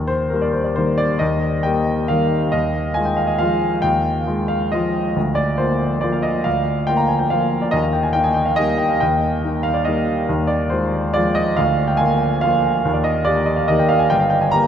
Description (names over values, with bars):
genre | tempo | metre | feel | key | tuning
classical, piano waltz | 139 BPM | 3/4 | uneven beats, rubato | Eb major | A4 = 440 Hz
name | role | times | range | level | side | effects
clear grand piano | solo | 0.0-14.7 s | G1 to Bb5 | -16 LUFS | equal | none
room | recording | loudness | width
wet cathedral reverb, RT60 6.4 s | in a vast, echoing space | -16 LUFS | side -9 dB against mid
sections
0.0-14.7 A section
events
none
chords
0.0 Eb; 2.5 Fm7/Eb; 5.2 Bb/D; 7.7 Eb; 10.3 Fm7/Eb; 11.6 Bb7/D; 12.9 Eb; 14.1 Eb/G (rootless)